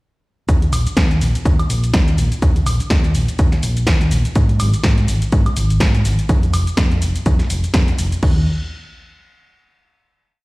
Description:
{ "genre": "filtered disco house", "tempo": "124 BPM", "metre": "4/4", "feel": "swing 57% on 16ths", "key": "unclear", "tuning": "A4 = 442 Hz", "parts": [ { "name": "hollow-body short-scale fingered electric bass", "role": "bass", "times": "0.5-8.5 s", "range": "F1 to Ab2", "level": "-17 LUFS", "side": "equal", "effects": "sidechain pumping" }, { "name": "electronic kick drum", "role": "drums", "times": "0.5-8.3 s", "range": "none", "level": "-16 LUFS", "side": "equal", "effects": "none" }, { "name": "punchy analog drum machine", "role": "drums", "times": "0.5-8.3 s", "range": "crash cymbal, hi-hat, shaker, snare drum, woodblock", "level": "-23 LUFS", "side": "equal", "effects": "sidechain pumping on hats, sidechain pumping on perc, sidechain pumping on cymbals" } ], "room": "little or no reverb", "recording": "played on a big sound system in a bare room, stone room reverb", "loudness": "-14 LUFS", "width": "side -22 dB against mid", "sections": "0.5-8.2 drop; 8.2-10.2 final note", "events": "drop 0.5-8.2", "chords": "none", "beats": "| 0.49 0.97 1.46 1.94 | 2.42 2.91 3.39 3.87 | 4.36 4.84 5.33 5.81 | 6.29 6.78 7.26 7.75 | 8.23" }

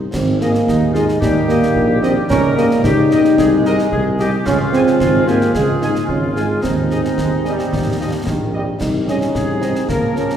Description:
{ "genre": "military-style march for wind band", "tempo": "111 BPM", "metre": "2/4", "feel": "straight", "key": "Ab major", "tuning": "A4 = 440 Hz", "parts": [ { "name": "mellow tuba", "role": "bass", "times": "0.0-10.3 s", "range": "Ab1 to Eb2", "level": "-20 LUFS", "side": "right 1 dB", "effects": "none" }, { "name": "warm euphonium", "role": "second line", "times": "0.1-10.4 s", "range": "G3 to Eb4", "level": "-17 LUFS", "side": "equal", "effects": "none" }, { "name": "warm trombone section", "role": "sustained chords", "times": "0.1-10.4 s", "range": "Eb3 to F4", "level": "-24 LUFS", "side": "equal", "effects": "none" }, { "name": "concert snare drum, clash cymbals and concert bass drum", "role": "drums", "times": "0.1-10.4 s", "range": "none", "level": "-24 LUFS", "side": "equal", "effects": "none" }, { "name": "bright trumpet section", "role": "melody", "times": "0.4-10.3 s", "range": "Bb4 to Ab5", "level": "-33 LUFS", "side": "equal", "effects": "none" }, { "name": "mellow French horn section", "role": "accompaniment", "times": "0.4-10.3 s", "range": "Ab3 to Ab4", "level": "-30 LUFS", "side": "left 3 dB", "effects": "none" }, { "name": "warm woodwind section", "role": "second line", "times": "0.7-10.4 s", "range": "Eb4 to Bb4", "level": "-24 LUFS", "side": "left 1 dB", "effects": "none" } ], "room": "wet concert hall reverb, RT60 2.6 s", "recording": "recorded in a church or concert hall", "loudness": "-13 LUFS", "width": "side -9 dB against mid", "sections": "0.1-10.4 A section", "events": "none", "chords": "0.1 Ab5; 1.2 Eb; 2.3 Eb7/Db; 3.4 Ab/C; 4.5 Db; 6.6 Ab/Eb; 7.7 Eb; 8.8 Ab/C", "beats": "| 0.13 0.68 | 1.22 1.76 | 2.30 2.84 | 3.38 3.92 | 4.46 5.01 | 5.55 6.09 | 6.63 7.17 | 7.71 8.26 | 8.80 9.34 | 9.88" }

